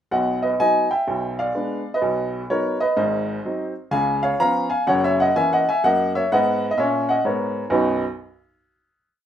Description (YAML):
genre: jazz, stride piano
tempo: 127 BPM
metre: 4/4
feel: swing 65% on 8ths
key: B major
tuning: A4 = 443 Hz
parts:
  - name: clear baby grand piano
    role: solo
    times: 0.1-8.0 s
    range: F#1 to A#5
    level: -18 LUFS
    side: equal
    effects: none
room: wet studio reverb, RT60 0.6 s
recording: rough home demo mix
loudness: -19 LUFS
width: side -10 dB against mid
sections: 0.1-7.7 A section; 7.7-9.2 final chord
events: none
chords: 0.1 B; 1.1 Bdim7; 2.0 B; 3.0 G#7; 3.9 C#7; 4.9 F#7; 5.8 F#69; 7.7 B